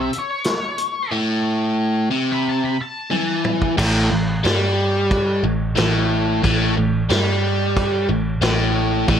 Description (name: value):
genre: blues rock power trio and southern rock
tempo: 90 BPM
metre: 4/4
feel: straight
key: unclear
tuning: A4 = 440 Hz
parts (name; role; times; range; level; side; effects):
- octave-fuzz lead guitar; melody; 0.0-3.4 s; C#5 to B5; -27 LUFS; left 3 dB; wah, distortion, tape echo
- biting overdriven guitar; riff; 0.0-9.2 s; A2 to G3; -19 LUFS; equal; none
- vintage muted picked electric bass; bass; 0.0-9.2 s; A1 to G2; -21 LUFS; equal; none
- vintage drum kit; drums; 0.1-9.2 s; crash cymbal, hi-hat, kick drum, snare drum, toms; -23 LUFS; equal; none
room: light reverb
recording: none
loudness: -17 LUFS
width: side -8 dB against mid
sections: 0.0-3.8 A section; 3.8-9.2 B section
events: drum fill 3.1-3.8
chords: 0.0 A; 3.8 Gsus2/A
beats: 0.45 | 1.12 1.78 2.45 3.11 | 3.78 4.44 5.11 5.77 | 6.43 7.09 7.76 8.42 | 9.08